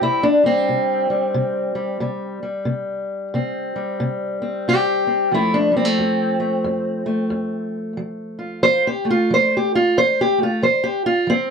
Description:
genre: acoustic country blues, solo or duo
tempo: 90 BPM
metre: 4/4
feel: swing 61% on 8ths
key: unclear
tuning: A4 = 440 Hz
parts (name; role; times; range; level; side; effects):
- fingerpicked steel-string acoustic guitar; solo; 0.0-11.5 s; F2 to C5; -17 LUFS; equal; none
room: moderate small room ambience, RT60 0.5 s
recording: none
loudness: -17 LUFS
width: side -6 dB against mid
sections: 0.0-11.5 A section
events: steel-string acoustic guitar solo 0.0-11.5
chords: 0.0 C5; 5.3 F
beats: | 0.02 0.69 1.35 2.02 | 2.68 3.34 4.01 4.67 | 5.33 6.00 6.66 7.32 | 7.99 8.65 9.31 9.97 | 10.63 11.29

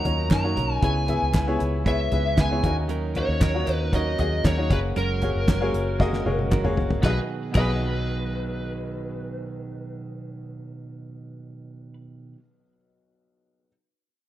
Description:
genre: piano-driven pop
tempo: 116 BPM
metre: 4/4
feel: straight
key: B major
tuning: A4 = 440 Hz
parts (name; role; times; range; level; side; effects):
- lead guitar through a small cranked amp; melody; 0.0-11.9 s; A#4 to A#5; -30 LUFS; equal; overdrive
- bright upright piano; accompaniment; 0.0-13.7 s; B1 to E5; -29 LUFS; left 3 dB; none
- direct-recorded clean electric guitar; riff; 0.0-12.4 s; B2 to B4; -32 LUFS; right 5 dB; none
- vintage muted fingered electric bass; bass; 0.0-12.3 s; F#1 to F#2; -27 LUFS; equal; none
- damped 70s drum kit; drums; 0.1-7.7 s; crash cymbal, hi-hat, kick drum, snare drum, toms; -24 LUFS; equal; none
- group handclap; percussion; 0.3-7.7 s; none; -41 LUFS; left 4 dB; none
room: light reverb, studio reverb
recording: rough home demo mix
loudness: -21 LUFS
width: side -13 dB against mid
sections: 0.0-7.0 A section; 7.0-11.2 B section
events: drum fill 6.0-7.0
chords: 0.0 D#m7; 0.8 C#m7; 2.6 D#m7; 4.7 F#add9; 7.0 B6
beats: 0.31 | 0.83 1.34 1.86 2.38 | 2.90 3.41 3.93 4.45 | 4.97 5.48 6.00 6.52 | 7.04 7.55 8.07 8.59 | 9.10 9.62 10.14 10.66

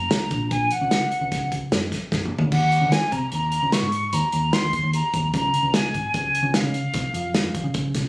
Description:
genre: progressive instrumental, band music in an uneven meter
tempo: 149 BPM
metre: 7/4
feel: straight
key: unclear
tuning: A4 = 440 Hz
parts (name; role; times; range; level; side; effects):
- breathy bright concert flute; melody; 0.0-7.8 s; F5 to Db6; -23 LUFS; equal; none
- hollow-body short-scale picked electric bass; bass; 0.0-8.1 s; Gb1 to Eb3; -25 LUFS; equal; none
- natural country drum kit; drums; 0.1-8.0 s; crash cymbal, hi-hat, kick drum, snare drum, toms; -24 LUFS; equal; none
room: moderate studio ambience, RT60 0.5 s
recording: recorded on a phone in the room, studio ambience, compression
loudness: -20 LUFS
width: side -24 dB against mid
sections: 0.0-2.5 A section; 2.5-8.1 B section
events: drum fill 2.1-2.5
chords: 0.0 Gb; 2.5 Eb5; 5.3 Db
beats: 0.11 0.51 0.91 1.31 1.72 2.12 | 2.52 2.92 3.32 3.73 4.13 4.53 4.93 | 5.33 5.73 6.14 6.54 6.94 7.34 7.74

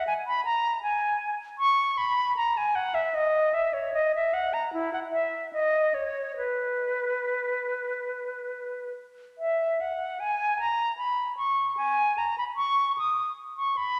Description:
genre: classical, baroque-style fantasia for unaccompanied flute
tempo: 68-80 BPM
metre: 4/4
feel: rubato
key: B major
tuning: A4 = 439 Hz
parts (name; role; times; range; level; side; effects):
- bright concert flute; solo; 0.0-14.0 s; E4 to D#6; -27 LUFS; equal; none
room: wet concert hall reverb, RT60 2.0 s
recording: none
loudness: -27 LUFS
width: mono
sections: 0.0-9.8 A section; 9.8-14.0 B section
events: none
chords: none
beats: | 0.06 0.82 1.58 2.36 | 3.14 3.93 4.72 5.53 | 6.38 7.25 8.11 8.96 | 9.80 10.59 11.38 12.18 | 12.97 13.77

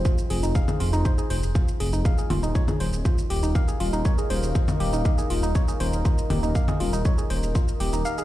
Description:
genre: melodic techno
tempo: 120 BPM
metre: 4/4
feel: straight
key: unclear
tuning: A4 = 440 Hz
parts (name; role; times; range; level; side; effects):
- dark detuned saw bass; bass; 0.0-8.0 s; Eb1 to F1; -25 LUFS; equal; sidechain pumping
- deep dark ambient pad; texture; 0.0-8.2 s; Eb4 to G5; -34 LUFS; left 1 dB; chorus, built-in reverb, sidechain pumping
- woody wave-folded pluck; arpeggios; 0.1-8.2 s; Eb4 to F5; -30 LUFS; equal; chorus, sidechain pumping, digital delay
- electronic kick drum; drums; 0.1-7.7 s; none; -21 LUFS; equal; none
- electronic shaker, hi-hat and congas; drums; 0.1-8.2 s; none; -32 LUFS; left 2 dB; none
room: light reverb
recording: played on a big sound system in a bare room, large studio reverb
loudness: -21 LUFS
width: side -15 dB against mid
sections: 0.0-8.2 A section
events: kick drops out 8.1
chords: 0.0 Fmadd9; 2.1 Ebsus4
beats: | 0.05 0.55 1.05 1.55 | 2.05 2.55 3.05 3.55 | 4.05 4.55 5.05 5.55 | 6.05 6.55 7.05 7.55 | 8.05

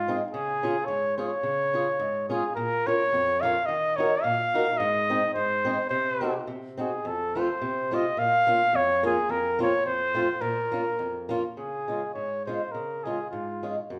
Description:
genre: alpine folk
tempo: 107 BPM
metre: 2/4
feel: swing 54% on 8ths, rubato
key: Bb minor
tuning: A4 = 440 Hz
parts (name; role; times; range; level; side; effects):
- mellow trumpet; melody; 0.0-13.7 s; F4 to F5; -28 LUFS; equal; none
- fingerpicked swing-style acoustic guitar; accompaniment; 0.0-14.0 s; F2 to Bb4; -32 LUFS; equal; none
room: wet large studio reverb, RT60 0.9 s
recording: band playing live in one room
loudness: -26 LUFS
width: mono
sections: 0.0-2.6 A section; 2.6-11.6 B section; 11.6-14.0 A section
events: none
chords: 0.3 Db; 2.6 Bbm; 3.7 Ebm; 4.8 Ab; 5.9 Cdim; 7.0 F; 8.2 Bbm; 9.3 Fsus4; 9.9 F; 10.4 Bbm; 11.6 Db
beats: | 0.34 0.89 | 1.44 2.00 | 2.57 3.13 | 3.69 4.24 | 4.80 5.35 | 5.90 6.47 | 7.04 7.61 | 8.17 8.73 | 9.29 9.85 | 10.41 10.98 | 11.56 12.15 | 12.74 13.32 | 13.90

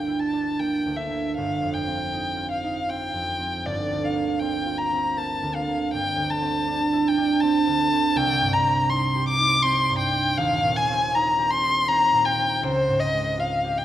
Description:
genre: classical, impressionist duo for violin and harp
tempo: 80 BPM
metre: 3/4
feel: rubato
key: G minor, C minor from 8.2 s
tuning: A4 = 444 Hz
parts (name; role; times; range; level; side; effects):
- dark violin; melody; 0.0-13.8 s; C5 to D6; -22 LUFS; left 2 dB; none
- concert harp; accompaniment; 0.0-13.8 s; Eb1 to Bb4; -25 LUFS; right 3 dB; none
room: wet concert hall reverb, RT60 2.1 s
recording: none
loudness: -20 LUFS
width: side -12 dB against mid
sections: 0.0-13.8 A section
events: none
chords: 0.0 Gm6; 1.4 Fsus2/G; 3.7 Gm7; 5.9 D9sus4/G; 8.2 Cmadd9; 10.4 Eb6; 12.6 Dbmaj7#11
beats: 0.60 | 1.37 2.14 2.91 | 3.68 4.44 5.20 | 5.93 6.68 7.43 | 8.16 8.90 9.64 | 10.39 11.14 11.88 | 12.63 13.40

